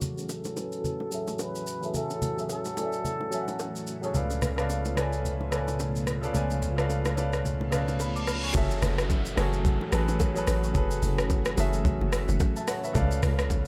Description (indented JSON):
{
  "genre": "amapiano",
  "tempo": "109 BPM",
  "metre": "4/4",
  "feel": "swing 58% on 16ths",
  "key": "F# minor",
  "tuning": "A4 = 440 Hz",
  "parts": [
    { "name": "trumpet with plunger mute", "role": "melody", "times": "0.0-3.8 s", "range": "F#4 to B4", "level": "-38 LUFS", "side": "equal", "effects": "low-pass filter, delay" },
    { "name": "warm concert grand piano", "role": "accompaniment", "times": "0.0-13.7 s", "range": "C#3 to E#6", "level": "-34 LUFS", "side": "equal", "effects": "low-pass filter" },
    { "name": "string machine, cellos", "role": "sustained chords", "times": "0.0-13.7 s", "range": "C#3 to F#4", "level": "-38 LUFS", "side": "equal", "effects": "phaser, ensemble chorus, sidechain pumping, low-pass filter" },
    { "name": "smooth R&B drum kit", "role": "drums", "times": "0.0-13.7 s", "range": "hi-hat, kick drum, rim click, shaker", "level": "-33 LUFS", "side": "equal", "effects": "none" },
    { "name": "congas and bongos", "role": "percussion", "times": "0.0-13.7 s", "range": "none", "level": "-37 LUFS", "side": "equal", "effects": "none" },
    { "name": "fingered electric bass", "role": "bass", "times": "4.1-8.5 s", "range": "C#2", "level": "-33 LUFS", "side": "equal", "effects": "none" },
    { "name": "reverse cymbal and downlifter", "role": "sound effects", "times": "7.9-13.0 s", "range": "none", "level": "-41 LUFS", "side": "equal", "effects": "none" },
    { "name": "hollow log drum bass", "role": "bass", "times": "8.5-13.7 s", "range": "F#1 to C#2", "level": "-30 LUFS", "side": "equal", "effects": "none" }
  ],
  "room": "little or no reverb",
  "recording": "none",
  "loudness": "-28 LUFS",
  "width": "mono",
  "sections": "0.0-8.5 A section; 8.5-13.7 B section",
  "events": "filter sweep 0.0-8.5; reverse cymbal 7.9-8.5; drop 8.5-13.7",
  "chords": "0.0 F#m7; 4.1 C#7b9b13; 8.5 F#m7; 13.0 C#7b9b13"
}